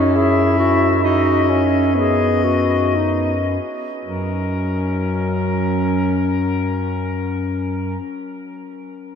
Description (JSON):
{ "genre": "classical, lyrical piece for single-reed quartet", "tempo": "53-71 BPM", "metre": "3/4", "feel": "rubato", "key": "F# major", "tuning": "A4 = 440 Hz", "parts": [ { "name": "clear alto saxophone", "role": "second line", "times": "0.0-8.0 s", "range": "F#3 to E4", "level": "-21 LUFS", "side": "right 1 dB", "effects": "none" }, { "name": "warm clarinet", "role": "accompaniment", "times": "0.0-8.0 s", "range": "C#4 to G#4", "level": "-23 LUFS", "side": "left 4 dB", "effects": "none" }, { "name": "mellow bass clarinet", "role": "bass", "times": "0.0-8.0 s", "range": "F#2", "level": "-21 LUFS", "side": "right 1 dB", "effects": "none" }, { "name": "clear soprano saxophone", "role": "melody", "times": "0.2-8.0 s", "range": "A#4 to E5", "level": "-25 LUFS", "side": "left 6 dB", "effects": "none" } ], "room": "wet huge ambient reverb, RT60 7.5 s", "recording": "in a vast, echoing space", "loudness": "-16 LUFS", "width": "side -7 dB against mid", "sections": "0.0-4.0 A section; 4.0-7.2 B section", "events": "slowing down 0.0-4.0", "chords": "0.0 F#5; 1.0 B/F#; 4.0 F#" }